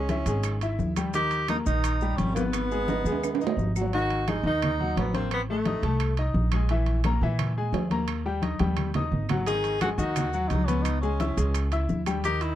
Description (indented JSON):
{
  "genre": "latin, salsa",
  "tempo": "173 BPM",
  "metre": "4/4",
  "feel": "straight",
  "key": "G# minor",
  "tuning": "A4 = 440 Hz",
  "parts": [
    { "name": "clear tenor saxophone", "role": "melody", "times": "0.0-6.2, 9.5-12.6 s", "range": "A3 to G#4", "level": "-29 LUFS", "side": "equal", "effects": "none" },
    { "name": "bright baby grand piano", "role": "accompaniment", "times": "0.0-12.5 s", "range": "D#3 to E6", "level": "-30 LUFS", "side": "left 3 dB", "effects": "none" },
    { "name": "upright bass", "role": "bass", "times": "0.0-12.6 s", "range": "G#1 to A#2", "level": "-28 LUFS", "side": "equal", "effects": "none" },
    { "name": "congas", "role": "percussion", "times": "0.1-12.6 s", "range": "none", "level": "-31 LUFS", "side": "left 1 dB", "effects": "none" },
    { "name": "maracas", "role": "percussion", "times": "0.1-3.9, 9.5-12.6 s", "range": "none", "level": "-44 LUFS", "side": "left 26 dB", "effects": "none" },
    { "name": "timbales", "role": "percussion", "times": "0.1-12.6 s", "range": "none", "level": "-35 LUFS", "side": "right 11 dB", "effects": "none" },
    { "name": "claves", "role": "percussion", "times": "0.5-12.2 s", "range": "none", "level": "-42 LUFS", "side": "right 23 dB", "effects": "none" }
  ],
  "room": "light reverb",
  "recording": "dry, close 1970s-style studio recording",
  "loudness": "-24 LUFS",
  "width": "side -12 dB against mid",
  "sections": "0.0-3.9 A section; 3.9-12.6 A section",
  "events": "drum fill 2.9-3.9, 8.4-9.5",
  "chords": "0.0 C#m; 1.1 D#; 2.5 G#m; 3.9 G#5; 5.3 B13b9 (rootless); 6.7 Emaj7#11; 8.1 D#; 9.5 G#m7; 10.9 C#m7",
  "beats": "0.10 0.44 0.79 | 1.14 1.49 1.84 2.19 | 2.54 2.88 3.23 3.58 | 3.93 4.27 4.62 4.97 | 5.31 5.66 6.01 6.35 | 6.70 7.04 7.39 7.74 | 8.08 8.43 8.77 9.12 | 9.47 9.81 10.16 10.51 | 10.85 11.20 11.54 11.89 | 12.24"
}